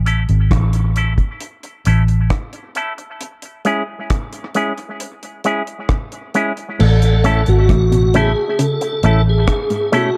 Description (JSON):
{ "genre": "dub reggae", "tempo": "67 BPM", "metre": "4/4", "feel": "straight", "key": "unclear", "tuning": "A4 = 440 Hz", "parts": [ { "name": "vintage muted fingered electric bass", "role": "bass", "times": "0.0-9.5 s", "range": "G#1 to A1", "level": "-16 LUFS", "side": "equal", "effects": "none" }, { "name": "electric guitar with an envelope filter", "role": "accompaniment", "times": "0.1-10.1 s", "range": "G#3 to A4", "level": "-23 LUFS", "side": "equal", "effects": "high-pass filter, tape echo" }, { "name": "deep reggae drum kit", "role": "drums", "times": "0.1-10.1 s", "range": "crash cymbal, hi-hat, kick drum, rim click", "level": "-23 LUFS", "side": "equal", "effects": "none" }, { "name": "tonewheel organ", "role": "melody", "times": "6.8-10.2 s", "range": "F#4 to A4", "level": "-21 LUFS", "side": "equal", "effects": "overdrive, chorus vibrato, slow rotary speaker, tape echo" }, { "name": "electric guitar with an envelope filter", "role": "arpeggios", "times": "6.8-10.1 s", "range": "G#2 to C#3", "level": "-25 LUFS", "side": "equal", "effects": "tape echo" } ], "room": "light reverb, studio reverb", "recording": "echo-heavy mix", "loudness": "-17 LUFS", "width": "mono", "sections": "0.0-6.8 A section; 6.8-10.2 B section", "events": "break 3.2-6.8", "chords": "0.0 A; 3.2 C#m; 6.8 A" }